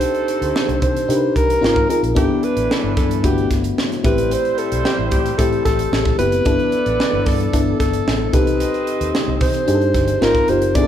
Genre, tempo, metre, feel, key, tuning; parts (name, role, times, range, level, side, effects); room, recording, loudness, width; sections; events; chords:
polished 1980s jazz-funk pop; 112 BPM; 4/4; straight; G major; A4 = 439 Hz
breathy alto saxophone; melody; 0.0-10.9 s; G4 to D5; -20 LUFS; right 1 dB
mellow horn section; second line; 0.0-10.9 s; Eb3 to Eb5; -28 LUFS; right 4 dB
FM electric piano; accompaniment; 0.0-10.9 s; A3 to B4; -20 LUFS; left 3 dB; chorus
vintage muted fingered electric bass; bass; 0.0-10.9 s; F#1 to C3; -24 LUFS; right 1 dB
crisp fusion drum kit; drums; 0.0-10.9 s; hi-hat, kick drum, snare drum; -21 LUFS; right 1 dB
moderate large studio reverb, RT60 1.2 s; band playing live in one room; -15 LUFS; side -10 dB against mid
0.0-10.9 A section
0.0 Cm6; 1.6 Ab69; 2.2 G69; 4.0 Am9; 6.5 G69; 8.3 Cm6; 10.2 Ab69